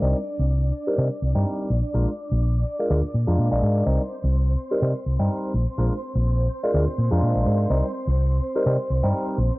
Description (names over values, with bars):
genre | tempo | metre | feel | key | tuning
house | 125 BPM | 4/4 | swing 55% on 16ths | C minor | A4 = 441 Hz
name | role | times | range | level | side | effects
barky tine electric piano | accompaniment | 0.0-9.4 s | G3 to Bb4 | -25 LUFS | equal | overdrive, phaser, low-pass filter
string machine, full ensemble | sustained chords | 0.0-9.6 s | C5 to D6 | -32 LUFS | equal | ensemble chorus, vintage 12-bit sampler grit, low-pass filter
hollow-body short-scale fingered electric bass | bass | 0.0-9.5 s | Bb1 to C3 | -20 LUFS | equal | low-pass filter
room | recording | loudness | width
little or no reverb | dry, gritty hardware recording, transformer saturation | -20 LUFS | side -21 dB against mid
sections
0.0-9.6 A section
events
filter sweep 0.0-9.6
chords
0.0 Cm7; 1.7 Bb7; 3.9 Cm7; 5.5 Bb7; 7.7 Cm7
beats
| 0.02 0.50 0.98 1.46 | 1.94 2.42 2.90 3.38 | 3.86 4.34 4.82 5.30 | 5.78 6.26 6.74 7.22 | 7.70 8.18 8.66 9.14